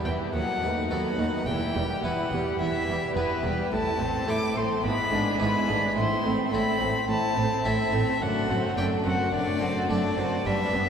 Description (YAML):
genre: classical, baroque-style concerto movement with solo episodes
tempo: 107 BPM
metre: 4/4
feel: straight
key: E minor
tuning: A4 = 440 Hz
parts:
  - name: rich violin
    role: melody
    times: 0.0-10.9 s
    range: B4 to D6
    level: -29 LUFS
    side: left 2 dB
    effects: none
  - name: warm chamber violin section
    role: melody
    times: 0.0-10.9 s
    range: F#4 to C5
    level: -38 LUFS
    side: left 5 dB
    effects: none
  - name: clear chamber violin section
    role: second line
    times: 0.0-10.9 s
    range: B3 to A4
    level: -33 LUFS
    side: left 2 dB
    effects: none
  - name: harpsichord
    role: accompaniment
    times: 0.0-10.9 s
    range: D#2 to C5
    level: -31 LUFS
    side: right 1 dB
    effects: none
  - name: rich chamber viola section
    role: accompaniment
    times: 0.0-10.9 s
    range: E3 to D4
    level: -31 LUFS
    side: equal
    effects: none
  - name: dark chamber double bass section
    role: bass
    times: 0.1-10.8 s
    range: E1 to D#2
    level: -34 LUFS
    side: right 3 dB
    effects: none
  - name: rich chamber cello section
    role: bass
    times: 0.1-10.8 s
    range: D#2 to A2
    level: -32 LUFS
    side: right 2 dB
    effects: none
room: wet cathedral reverb, RT60 5.4 s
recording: recorded in a church or concert hall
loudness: -24 LUFS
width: side -7 dB against mid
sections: 0.0-10.9 A section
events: none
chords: 0.3 B7/D#; 1.5 Em; 3.7 Am; 4.8 E7/G#; 6.0 Am; 8.2 D7/F#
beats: 0.34 0.90 | 1.46 2.03 2.60 3.16 | 3.72 4.28 4.84 5.41 | 5.97 6.53 7.09 7.65 | 8.21 8.77 9.33 9.89 | 10.45